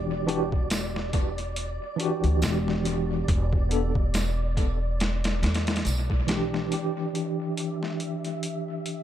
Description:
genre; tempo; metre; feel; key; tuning
trip hop; 70 BPM; 4/4; swing 57% on 16ths; E minor; A4 = 439 Hz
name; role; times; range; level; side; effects
tine electric piano; accompaniment; 0.0-9.0 s; E3 to A4; -29 LUFS; equal; medium stereo tremolo, tape echo
upright bass; bass; 0.0-6.7 s; E1 to E2; -27 LUFS; equal; none
flickering grainy texture; texture; 0.0-9.0 s; D5 to E5; -38 LUFS; equal; built-in reverb
boom bap sampler-style drum kit; drums; 0.3-9.0 s; hi-hat, kick drum, snare drum; -28 LUFS; equal; overdrive, high-pass filter on hats, studio reverb, high-pass filter on kick, high-pass filter on snare, analog delay
tambourine; percussion; 0.7-6.1 s; none; -41 LUFS; right 3 dB; analog delay
room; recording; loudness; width
digital ambience; echo-heavy mix; -24 LUFS; side -11 dB against mid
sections
0.0-6.7 A section; 6.7-9.0 B section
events
filter sweep on tine electric piano 0.0-6.7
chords
0.0 Em9; 3.3 Bm/E; 6.7 Em7

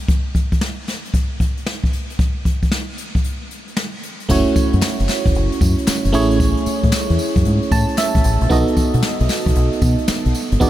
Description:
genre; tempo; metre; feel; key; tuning
R&B, new jack swing; 114 BPM; 4/4; swing 65% on 16ths; F# dorian; A4 = 439 Hz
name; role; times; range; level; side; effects
jazz brush drum kit; drums; 0.1-10.7 s; crash cymbal, hi-hat, kick drum, snare drum, tambourine; -19 LUFS; equal; none
FM electric piano; accompaniment; 4.3-10.7 s; A3 to A5; -19 LUFS; right 3 dB; chorus
deep dub fingered electric bass; bass; 4.3-10.7 s; F#1 to B2; -17 LUFS; equal; none
group handclap; percussion; 4.8-10.2 s; none; -36 LUFS; left 7 dB; none
room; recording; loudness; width
light reverb, small room ambience; none; -15 LUFS; side -13 dB against mid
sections
0.0-4.3 A section; 4.3-10.7 B section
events
break 3.2-4.3; FM electric piano fill 7.5-8.5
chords
0.0 N.C.; 4.3 F#m7; 6.1 Amaj7; 8.5 B7

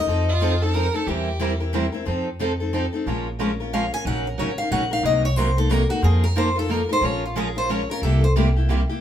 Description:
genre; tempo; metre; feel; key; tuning
acoustic string swing (jazz manouche); 181 BPM; 3/4; swing 61% on 8ths; Bb minor; A4 = 440 Hz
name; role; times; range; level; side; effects
picked steel-string acoustic guitar; melody; 0.0-0.6, 3.7-8.3 s; F4 to Ab5; -24 LUFS; left 2 dB; none
picked steel-string acoustic guitar; accompaniment; 0.0-9.0 s; C3 to Bb4; -26 LUFS; left 4 dB; none
upright bass; bass; 0.0-8.8 s; Ab1 to F2; -23 LUFS; equal; none
picked steel-string acoustic guitar; accompaniment; 0.1-8.8 s; C3 to Bb4; -28 LUFS; right 5 dB; none
rich violin; second line; 0.3-1.7 s; F4 to Bb4; -28 LUFS; right 3 dB; none
room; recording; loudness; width
wet studio reverb, RT60 0.6 s; band playing live in one room; -19 LUFS; side -10 dB against mid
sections
0.0-3.1 A section; 3.1-9.0 B section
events
steel-string acoustic guitar solo 3.1-9.0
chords
0.1 F7; 1.1 C7/E; 2.1 F7; 3.1 Bbm7; 4.1 Ebm7; 5.0 Cm7b5; 6.0 F7sus4; 7.0 Bbm7; 8.0 C7

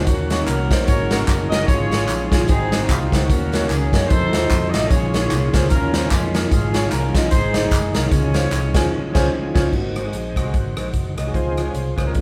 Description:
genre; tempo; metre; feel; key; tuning
uptempo gospel; 149 BPM; 4/4; swing 58% on 8ths; Db major; A4 = 442 Hz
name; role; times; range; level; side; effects
mellow horn section; melody; 0.0-9.3 s; Ab3 to Eb5; -27 LUFS; equal; none
tonewheel organ; sustained chords; 0.0-12.2 s; Eb3 to Db5; -30 LUFS; equal; chorus vibrato, slow rotary speaker
fingered electric bass; bass; 0.0-12.2 s; Gb1 to Gb2; -26 LUFS; equal; none
clear grand piano; accompaniment; 0.1-12.2 s; Ab2 to Ab5; -28 LUFS; equal; none
swinging big-band drum kit; drums; 0.1-12.2 s; crash cymbal, hi-hat, kick drum, rim click, snare drum; -22 LUFS; equal; none
tambourine and handclaps; percussion; 0.1-8.8 s; none; -34 LUFS; equal; none
room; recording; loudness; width
moderate large studio reverb, RT60 0.9 s; band playing live in one room; -19 LUFS; mono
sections
0.0-9.7 A section; 9.7-12.2 B section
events
band accent 8.9-9.7; tonewheel organ solo 9.7-12.2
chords
0.1 Ebm7; 0.9 Ab9sus4; 1.7 Db/Ab; 2.5 Ab7; 3.3 Ebm7; 4.1 F7b9; 4.9 Bbm7; 6.5 Db/Ab; 7.3 Ab; 8.1 Dbmaj7; 9.7 Ab7; 11.3 Dbmaj7

